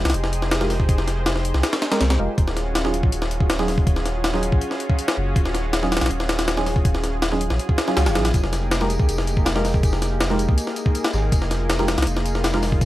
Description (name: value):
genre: drum and bass, jungle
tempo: 161 BPM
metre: 4/4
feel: straight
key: F phrygian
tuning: A4 = 438 Hz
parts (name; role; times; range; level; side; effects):
- lush unison pad; sustained chords; 0.0-12.8 s; Bb3 to C5; -28 LUFS; left 1 dB; chorus
- saturated sub bass; bass; 0.0-12.8 s; Eb1 to Db2; -23 LUFS; equal; none
- breakbeat sampler-style drum kit; drums; 0.1-12.8 s; hi-hat, kick drum, snare drum; -21 LUFS; equal; none
- deep mellow chord stab; stabs; 0.6-12.6 s; Gb3 to Bb4; -28 LUFS; right 2 dB; chorus, dub echo
- swell; sound effects; 7.7-8.3 s; none; -30 LUFS; left 2 dB; none
- crunchy breakbeat drum kit; drums; 8.3-12.8 s; hi-hat, snare drum, tambourine; -35 LUFS; left 1 dB; high-pass filter on hats, high-pass filter on snare, high-pass filter on perc, high-pass filter on room
room: light reverb, small room ambience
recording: vinyl crackle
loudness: -18 LUFS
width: side -15 dB against mid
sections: 0.0-12.8 A section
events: swell 7.7-8.3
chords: 0.0 Fm11; 2.4 Ebm11; 8.3 Fm11